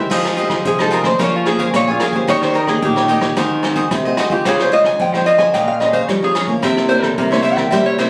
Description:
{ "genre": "samba and choro", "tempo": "110 BPM", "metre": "4/4", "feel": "straight", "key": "F minor", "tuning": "A4 = 438 Hz", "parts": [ { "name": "cavaquinho", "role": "accompaniment", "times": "0.0-8.1 s", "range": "Eb4 to Bb5", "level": "-24 LUFS", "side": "equal", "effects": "none" }, { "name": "nylon-string guitar", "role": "accompaniment", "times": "0.0-8.1 s", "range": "Ab2 to C5", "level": "-24 LUFS", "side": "equal", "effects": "none" }, { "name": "nylon-string guitar", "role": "bass", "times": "0.0-8.1 s", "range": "Bb2 to G3", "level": "-22 LUFS", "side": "equal", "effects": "none" }, { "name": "vintage brush drum kit", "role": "drums", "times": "0.1-8.1 s", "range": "crash cymbal, hi-hat, kick drum, rim click", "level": "-26 LUFS", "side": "equal", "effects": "none" }, { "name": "lap resonator guitar", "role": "melody", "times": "0.7-8.1 s", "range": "F4 to Ab5", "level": "-19 LUFS", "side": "equal", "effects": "plate reverb" } ], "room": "moderate studio reverb, RT60 0.7 s", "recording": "recorded on a phone in the room, studio ambience", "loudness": "-16 LUFS", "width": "mono", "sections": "0.1-8.1 A section", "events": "resonator guitar played with a steel bar solo 0.1-8.1", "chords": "0.1 Fm9; 1.2 Bbm7/F; 2.3 Eb7; 3.4 Ab7/Eb; 4.5 Dbmaj7; 5.5 Bbm9; 6.6 C7b9", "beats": "| 0.11 0.66 1.20 1.74 | 2.29 2.83 3.38 3.92 | 4.46 5.01 5.55 6.09 | 6.64 7.18 7.72" }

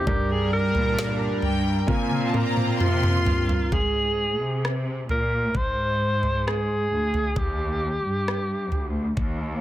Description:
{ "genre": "pop ballad", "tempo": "66 BPM", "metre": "4/4", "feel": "straight", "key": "unclear", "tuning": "A4 = 440 Hz", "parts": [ { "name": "breathy alto saxophone", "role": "melody", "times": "0.0-9.2 s", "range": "F4 to C5", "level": "-26 LUFS", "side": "right 1 dB", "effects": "none" }, { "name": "dark grand piano", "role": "accompaniment", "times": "0.0-3.7 s", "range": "G2 to Bb4", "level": "-28 LUFS", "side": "right 2 dB", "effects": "none" }, { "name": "chorused pulse-width pad", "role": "sustained chords", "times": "0.0-3.7 s", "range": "G3 to Bb4", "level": "-31 LUFS", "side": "right 1 dB", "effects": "none" }, { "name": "warm studio cello section", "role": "bass", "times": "0.0-9.6 s", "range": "D2 to C3", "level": "-27 LUFS", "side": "equal", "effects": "none" }, { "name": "smooth R&B drum kit", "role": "drums", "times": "0.1-9.4 s", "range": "kick drum, rim click, snare drum, toms", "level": "-27 LUFS", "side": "equal", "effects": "none" }, { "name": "clear studio violin section", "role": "second line", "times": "1.4-3.7 s", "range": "G5 to C6", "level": "-31 LUFS", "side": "left 2 dB", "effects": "none" } ], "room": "small room ambience", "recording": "dense, heavily limited modern master", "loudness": "-22 LUFS", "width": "side -13 dB against mid", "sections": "0.0-3.7 A section; 3.7-9.6 B section", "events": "drum fill 1.9-3.7", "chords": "0.1 Gm; 1.9 Bbsus2; 3.7 Ab; 7.4 Eb", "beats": "| 0.07 0.97 1.88 2.80 | 3.72 4.63 5.54 6.46 | 7.36 8.27 9.17" }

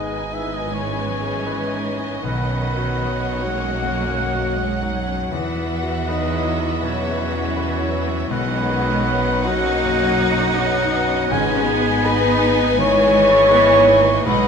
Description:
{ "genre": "cinematic, emotional film score for orchestra", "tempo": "80 BPM", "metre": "4/4", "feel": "rubato", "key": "G# minor", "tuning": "A4 = 440 Hz", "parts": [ { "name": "warm symphonic violin section", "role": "melody", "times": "0.0-14.5 s", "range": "F#5 to G#5", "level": "-29 LUFS", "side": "left 3 dB", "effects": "none" }, { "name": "concert flute", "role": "second line", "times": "0.0-14.5 s", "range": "B4 to C#6", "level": "-28 LUFS", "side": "left 1 dB", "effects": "none" }, { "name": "warm oboe", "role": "second line", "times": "0.0-14.5 s", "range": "B4 to C#6", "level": "-27 LUFS", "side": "right 1 dB", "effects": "none" }, { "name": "warm symphonic violin section", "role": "second line", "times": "0.0-14.5 s", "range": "B4 to E5", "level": "-29 LUFS", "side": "left 2 dB", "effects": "none" }, { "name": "clear grand piano", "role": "accompaniment", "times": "0.0-14.5 s", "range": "B1 to C#5", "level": "-28 LUFS", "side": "left 3 dB", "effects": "none" }, { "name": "rich symphonic viola section", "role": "accompaniment", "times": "0.0-14.5 s", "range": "D#3 to D#4", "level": "-26 LUFS", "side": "right 4 dB", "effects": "none" }, { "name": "mellow French horn section", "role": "sustained chords", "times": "0.0-14.5 s", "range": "B3 to C#5", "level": "-21 LUFS", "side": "left 2 dB", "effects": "none" }, { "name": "concert harp", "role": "arpeggios", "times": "0.0-14.5 s", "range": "G#2 to D#6", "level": "-30 LUFS", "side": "left 7 dB", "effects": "none" }, { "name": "warm symphonic double bass section", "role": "bass", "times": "0.0-14.5 s", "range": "G#1 to E2", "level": "-26 LUFS", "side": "right 5 dB", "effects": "none" }, { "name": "timpani", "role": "percussion", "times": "0.0-0.3, 11.3-12.4 s", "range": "G#2", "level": "-32 LUFS", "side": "right 2 dB", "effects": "none" }, { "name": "rich symphonic cello section", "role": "bass", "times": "0.7-14.5 s", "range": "D#3 to D#4", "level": "-26 LUFS", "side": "right 4 dB", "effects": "none" } ], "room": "wet recital hall reverb, RT60 1.5 s", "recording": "minimal, uncompressed stereo recording", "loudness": "-16 LUFS", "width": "side -6 dB against mid", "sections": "0.0-14.5 A section", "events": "none", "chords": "0.0 G#m; 2.2 Badd9; 5.3 Esus2; 8.3 Badd9; 11.3 G#m", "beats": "0.71 1.46 | 2.23 3.03 3.81 4.57 | 5.31 6.07 6.82 7.56 | 8.30 9.06 9.83 10.58 | 11.31 12.05 12.79 13.52 | 14.26" }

